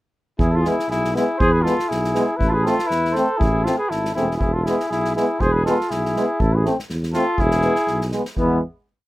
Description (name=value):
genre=balkan folk, Balkan brass band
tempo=121 BPM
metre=2/4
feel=swing 56% on 16ths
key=unclear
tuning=A4 = 440 Hz
part: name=cornet with cup mute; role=melody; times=0.4-8.6 s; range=E4 to C5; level=-24 LUFS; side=right 1 dB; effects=none
part: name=mellow trumpet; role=second line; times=0.4-8.6 s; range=B3 to A4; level=-23 LUFS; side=left 1 dB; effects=none
part: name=mellow tuba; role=bass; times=0.4-8.6 s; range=E1 to E2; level=-22 LUFS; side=equal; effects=none
part: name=unplugged drum kit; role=percussion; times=0.4-8.6 s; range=kick drum, snare drum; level=-26 LUFS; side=equal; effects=none
part: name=clear French horn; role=accompaniment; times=0.6-8.6 s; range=B3 to C4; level=-24 LUFS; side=left 3 dB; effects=none
part: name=clear euphonium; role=accompaniment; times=0.6-8.6 s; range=G#3 to A3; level=-25 LUFS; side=right 4 dB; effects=none
room=light reverb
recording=rough home demo mix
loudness=-18 LUFS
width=side -17 dB against mid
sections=0.4-8.4 A section; 8.4-9.1 final chord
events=none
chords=0.4 E; 2.4 Am; 4.4 E; 6.4 Am; 7.4 E